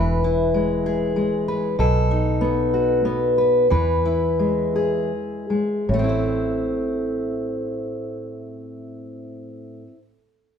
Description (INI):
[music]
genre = folk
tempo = 76-97 BPM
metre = 3/4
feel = straight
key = A harmonic minor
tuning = A4 = 440 Hz
[part]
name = fingerpicked steel-string acoustic guitar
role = accompaniment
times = 0.0-10.0 s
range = A2 to C5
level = -20 LUFS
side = left 1 dB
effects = none
[part]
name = fingered electric bass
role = bass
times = 0.0-9.8 s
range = E1 to E2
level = -25 LUFS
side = equal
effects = none
[sound]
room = wet large studio reverb, RT60 1.0 s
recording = band playing live in one room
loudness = -19 LUFS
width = side -7 dB against mid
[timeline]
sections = 0.0-5.9 A section; 5.9-10.6 B section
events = slowing down 1.8-5.9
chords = 0.0 E; 1.8 B7; 3.7 E; 5.9 Am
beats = 0.55 1.17 | 1.79 2.41 3.05 | 3.71 4.39 5.11 | 5.88 6.68 7.47 | 8.27 9.06 9.85